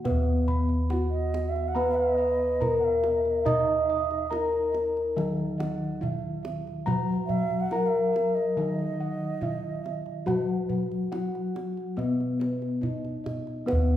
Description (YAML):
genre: Javanese gamelan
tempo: 70 BPM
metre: 4/4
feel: straight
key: Eb pelog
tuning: A4 = 440 Hz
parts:
  - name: gamelan-type bronze metallophone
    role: melody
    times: 0.0-14.0 s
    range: Cb4 to Eb5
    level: -28 LUFS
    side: left 1 dB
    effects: none
  - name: gamelan-type bronze metallophone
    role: accompaniment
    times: 0.0-14.0 s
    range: Eb3 to Eb4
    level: -33 LUFS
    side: left 2 dB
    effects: none
  - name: gamelan-type bossed gongs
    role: arpeggios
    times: 0.0-14.0 s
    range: Cb5 to Cb6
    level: -40 LUFS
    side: left 2 dB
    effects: none
  - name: gamelan-type bronze metallophone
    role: arpeggios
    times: 0.0-14.0 s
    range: Cb5 to Eb6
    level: -39 LUFS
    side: right 6 dB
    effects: none
  - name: gamelan-type bossed gongs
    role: bass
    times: 0.0-14.0 s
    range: Eb2 to Eb5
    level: -31 LUFS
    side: equal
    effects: none
  - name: kendang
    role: percussion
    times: 0.1-13.9 s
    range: none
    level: -36 LUFS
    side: right 2 dB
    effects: none
  - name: mellow bansuri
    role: second line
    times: 1.1-10.5 s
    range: Eb5 to Gb5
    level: -34 LUFS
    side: right 6 dB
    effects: none
room: wet recital hall reverb, RT60 1.6 s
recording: recorded in a church or concert hall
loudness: -25 LUFS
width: side -12 dB against mid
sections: 0.1-13.7 A section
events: none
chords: none